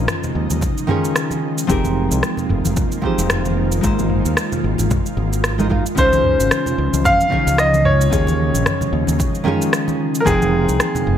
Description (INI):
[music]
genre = sunset chillout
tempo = 112 BPM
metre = 4/4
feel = swing 57% on 16ths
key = unclear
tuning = A4 = 438 Hz
[part]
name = nylon-string guitar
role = accompaniment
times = 0.0-11.2 s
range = Db3 to G5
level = -21 LUFS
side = equal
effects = auto-pan, tape echo
[part]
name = ethereal airy pad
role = sustained chords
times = 0.0-11.2 s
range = Db3 to F4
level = -24 LUFS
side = right 1 dB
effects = ensemble chorus, built-in reverb
[part]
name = modern bright fingered electric bass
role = bass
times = 0.0-11.2 s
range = F1 to Eb2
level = -20 LUFS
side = equal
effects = none
[part]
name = smooth R&B drum kit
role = drums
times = 0.1-11.2 s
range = cabasa, rim click, toms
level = -23 LUFS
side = equal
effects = none
[part]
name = congas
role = percussion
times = 0.1-11.0 s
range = none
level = -27 LUFS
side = left 4 dB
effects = none
[part]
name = electronic kick drum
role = drums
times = 0.6-10.4 s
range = none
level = -22 LUFS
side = equal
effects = overdrive
[part]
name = bright baby grand piano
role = melody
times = 6.0-11.2 s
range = Ab4 to F5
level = -18 LUFS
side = left 1 dB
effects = vintage 12-bit sampler grit, tape echo
[sound]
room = light reverb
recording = none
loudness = -15 LUFS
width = side -9 dB against mid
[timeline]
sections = 0.0-11.2 A section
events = none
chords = 0.0 Eb13sus4; 1.7 Fm11; 3.8 Ab69; 6.0 Dbmaj7; 8.1 Eb9sus4; 10.3 Fm11